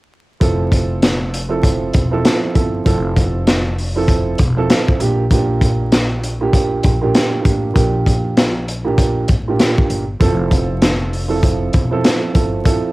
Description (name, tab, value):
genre	hip hop, boom-bap hip-hop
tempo	98 BPM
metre	4/4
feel	swing 62% on 16ths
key	F major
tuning	A4 = 440 Hz
part	dark upright piano	accompaniment	0.4-12.9 s	Bb2 to A4	-19 LUFS	right 3 dB	cassette tape, high-pass filter, low-pass filter
part	upright bass	bass	0.4-12.6 s	E1 to Bb1	-21 LUFS	equal	none
part	crunchy breakbeat drum kit	drums	0.4-12.8 s	hi-hat, kick drum, snare drum	-15 LUFS	equal	cassette tape
room	light reverb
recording	home recording on cassette, vinyl crackle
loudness	-13 LUFS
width	side -20 dB against mid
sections	0.4-12.9 A section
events	none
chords	0.4 Fmaj7; 5.0 Bb6; 10.2 Fmaj7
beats	| 0.41 1.02 1.63 2.25 | 2.86 3.47 4.08 4.69 | 5.31 5.92 6.53 7.14 | 7.75 8.37 8.98 9.59 | 10.20 10.82 11.43 12.04 | 12.65